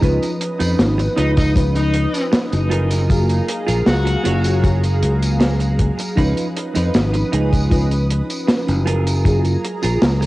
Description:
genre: vaporwave.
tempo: 78 BPM.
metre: 4/4.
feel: straight.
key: F# major.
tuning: A4 = 438 Hz.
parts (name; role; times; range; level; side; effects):
FM electric piano with soft pad layer; accompaniment; 0.0-10.3 s; E#3 to E#5; -23 LUFS; equal; ensemble chorus, cassette tape, tape echo.
lush unison pad; sustained chords; 0.0-10.3 s; G#4 to D#6; -30 LUFS; equal; chorus, phaser, cassette tape.
clean electric guitar; riff; 0.0-10.3 s; D#4 to C#5; -26 LUFS; right 5 dB; lush chorus, cassette tape, tape echo.
fingered electric bass; bass; 0.0-10.3 s; F#1 to E#2; -18 LUFS; equal; none.
deep reggae drum kit; drums; 0.0-10.3 s; hi-hat, snare drum, tambourine; -22 LUFS; equal; small room ambience, cassette tape.
kick drum; drums; 0.0-9.4 s; none; -18 LUFS; equal; small room ambience, cassette tape.
fuzz lead guitar; melody; 1.2-4.6 s; D#4 to F#4; -26 LUFS; left 2 dB; distortion, cassette tape, tape echo.
room: light reverb, small room ambience.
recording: home recording on cassette.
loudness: -15 LUFS.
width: side -18 dB against mid.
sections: 0.0-10.3 A section.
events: clean electric guitar fill 10.0.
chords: 0.0 C#9; 2.7 F#maj9; 6.2 C#9; 8.9 F#maj9.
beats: | 0.02 0.79 1.56 2.33 | 3.10 3.87 4.64 5.41 | 6.18 6.95 7.71 8.48 | 9.25 10.02.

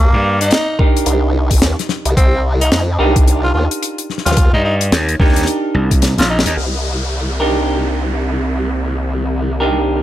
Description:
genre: glitch hop.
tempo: 109 BPM.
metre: 4/4.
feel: swing 60% on 16ths.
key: C minor.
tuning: A4 = 442 Hz.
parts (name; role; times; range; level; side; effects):
growling tenor saxophone; melody; 0.0-6.5 s; Bb3 to F4; -20 LUFS; equal; analog delay.
semi-hollow electric guitar; stabs; 0.0-10.0 s; D4 to D5; -20 LUFS; right 2 dB; sidechain pumping, analog delay.
formant-sweep wobble bass; bass; 0.0-10.0 s; C2 to F2; -17 LUFS; equal; chorus.
gritty slap bass; bass; 0.1-0.5, 4.5-6.6 s; Bb1 to G2; -16 LUFS; equal; overdrive.
tight funk drum kit; drums; 0.4-6.5 s; hi-hat, snare drum; -18 LUFS; left 2 dB; none.
electronic kick drum; drums; 0.8-6.0 s; none; -12 LUFS; equal; overdrive.
warbly tape-like pad; sustained chords; 7.1-10.0 s; Eb3 to G4; -25 LUFS; right 2 dB; chorus, built-in reverb, sidechain pumping.
downlifter; sound effects; 6.6-10.0 s; none; -26 LUFS; left 1 dB; none.
room: small room ambience.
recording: dry, gritty hardware recording.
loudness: -13 LUFS.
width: side -13 dB against mid.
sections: 0.0-6.6 A section; 6.6-10.0 B section.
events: drum fill 6.0-6.6; band accent 6.4; filter sweep on ambient pad 6.6-10.0.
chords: 0.0 Cm7.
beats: 0.52 1.07 1.62 | 2.17 2.72 3.27 3.82 | 4.37 4.92 5.47 6.03 | 6.58 7.13 7.68 8.23 | 8.78 9.33 9.88.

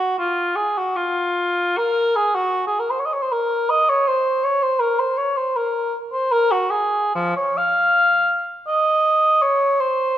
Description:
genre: classical, free, expressive piece for unaccompanied cor anglais.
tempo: 78 BPM.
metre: 3/4.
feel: uneven beats, rubato.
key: Bb minor.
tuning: A4 = 440 Hz.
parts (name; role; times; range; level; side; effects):
dark cor anglais; solo; 0.0-10.2 s; F3 to F5; -17 LUFS; equal; none.
room: wet scoring stage reverb, RT60 1.6 s.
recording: none.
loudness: -17 LUFS.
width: side -11 dB against mid.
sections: 0.0-10.2 A section.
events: none.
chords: none.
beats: | 0.17 0.95 1.75 | 2.54 3.32 4.07 | 4.81 5.56 6.32 | 7.14 7.94 8.67 | 9.41 10.18.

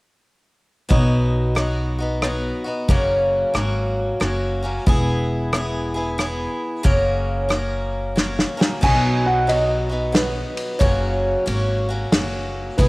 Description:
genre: honky-tonk and classic country.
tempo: 91 BPM.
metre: 3/4.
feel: swing 64% on 8ths.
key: B major.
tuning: A4 = 440 Hz.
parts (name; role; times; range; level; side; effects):
picked swing-style acoustic guitar; accompaniment; 0.9-12.9 s; F#2 to A#4; -23 LUFS; left 1 dB; none.
upright bass; bass; 0.9-12.9 s; E1 to B1; -23 LUFS; equal; none.
natural country drum kit; drums; 0.9-12.9 s; crash cymbal, kick drum, ride cymbal, rim click, snare drum; -21 LUFS; equal; cassette tape.
dark upright piano; second line; 8.8-12.9 s; B4 to G#5; -22 LUFS; right 1 dB; none.
room: light reverb, small room ambience.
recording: home recording on cassette.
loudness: -18 LUFS.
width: side -23 dB against mid.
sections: 0.9-8.8 A section; 8.8-12.9 B section.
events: drum fill 8.2-8.8; upright piano solo 8.8-12.9.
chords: 0.9 B; 2.9 F#; 4.9 E; 6.8 F#; 8.8 B; 10.8 F#.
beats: | 0.90 1.56 2.23 | 2.89 3.55 4.21 | 4.87 5.53 6.19 | 6.85 7.51 8.17 | 8.83 9.49 10.15 | 10.81 11.47 12.13 | 12.79.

